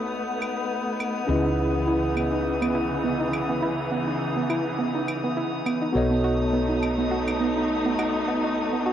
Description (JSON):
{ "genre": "sunset chillout", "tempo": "103 BPM", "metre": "4/4", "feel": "swing 55% on 16ths", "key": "C# minor", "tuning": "A4 = 441 Hz", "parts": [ { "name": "tine electric piano", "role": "accompaniment", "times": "0.0-8.9 s", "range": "B3 to D#5", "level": "-28 LUFS", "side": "equal", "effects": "medium tremolo, auto-pan, vintage 12-bit sampler grit, analog delay" }, { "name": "muted studio string section", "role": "sustained chords", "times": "0.0-8.9 s", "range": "C#3 to D#4", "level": "-28 LUFS", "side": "left 1 dB", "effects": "vintage 12-bit sampler grit" }, { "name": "woody fretless electric bass", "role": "bass", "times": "0.0-8.9 s", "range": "B1 to C#2", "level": "-30 LUFS", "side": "equal", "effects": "none" }, { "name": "drifting glass-harmonics texture", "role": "texture", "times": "0.0-8.9 s", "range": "D#4 to D#6", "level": "-34 LUFS", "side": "left 1 dB", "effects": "chorus, built-in reverb" }, { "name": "claves", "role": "drums", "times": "0.4-8.1 s", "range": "none", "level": "-34 LUFS", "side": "right 2 dB", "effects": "none" }, { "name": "soft round pluck", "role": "arpeggios", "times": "1.3-8.9 s", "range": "B3 to F#4", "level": "-28 LUFS", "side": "right 3 dB", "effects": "chorus, analog delay" } ], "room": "light reverb, digital ambience", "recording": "dry, gritty hardware recording", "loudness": "-22 LUFS", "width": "side -10 dB against mid", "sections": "0.0-8.9 A section", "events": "none", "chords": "0.0 B9; 1.3 C#m9; 6.0 B9", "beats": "0.13 0.71 | 1.29 1.87 2.46 3.04 | 3.62 4.20 4.79 5.37 | 5.95 6.53 7.12 7.70 | 8.28 8.86" }